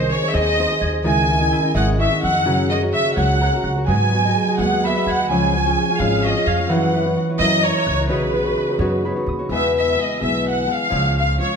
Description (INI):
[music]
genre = mexican folk, mariachi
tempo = 85 BPM (dotted quarters)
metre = 6/8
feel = straight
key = B major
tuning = A4 = 441 Hz
[part]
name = warm studio violin section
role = melody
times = 0.0-11.6 s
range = B4 to G#5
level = -20 LUFS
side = right 1 dB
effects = none
[part]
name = nylon-string guitar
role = accompaniment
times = 0.0-11.6 s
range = E2 to D#5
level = -23 LUFS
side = left 3 dB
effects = none
[part]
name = concert harp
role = arpeggios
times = 0.0-11.5 s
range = C#3 to G#6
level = -23 LUFS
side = right 1 dB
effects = none
[part]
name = upright bass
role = bass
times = 0.0-11.4 s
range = G#1 to G#2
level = -23 LUFS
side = right 1 dB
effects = none
[sound]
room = wet recital hall reverb, RT60 1.7 s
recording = none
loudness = -16 LUFS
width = side -6 dB against mid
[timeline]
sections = 0.0-9.5 A section; 9.5-11.6 B section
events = none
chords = 0.0 G#/B#; 1.0 C#madd9; 2.4 F#; 3.9 G#m7; 5.3 C#; 6.7 F#7sus4; 7.4 F#7; 8.1 Badd9; 9.5 E; 10.9 C#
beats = 0.34 | 1.03 1.74 | 2.44 3.15 | 3.87 4.58 | 5.29 5.99 | 6.69 7.39 | 8.09 8.79 | 9.50 10.21 | 10.91